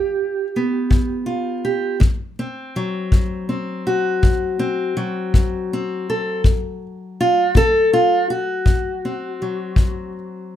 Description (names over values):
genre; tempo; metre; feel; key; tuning
acoustic country blues, solo or duo; 54 BPM (dotted quarters); 12/8; straight; D mixolydian; A4 = 443 Hz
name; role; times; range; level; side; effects
fingerpicked steel-string acoustic guitar; melody; 0.0-10.6 s; D2 to A4; -20 LUFS; equal; none
kick drum; drums; 0.9-9.9 s; none; -16 LUFS; left 1 dB; none
room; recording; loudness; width
little or no reverb; none; -17 LUFS; side -10 dB against mid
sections
0.0-10.6 A section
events
none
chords
0.0 G7; 2.0 D7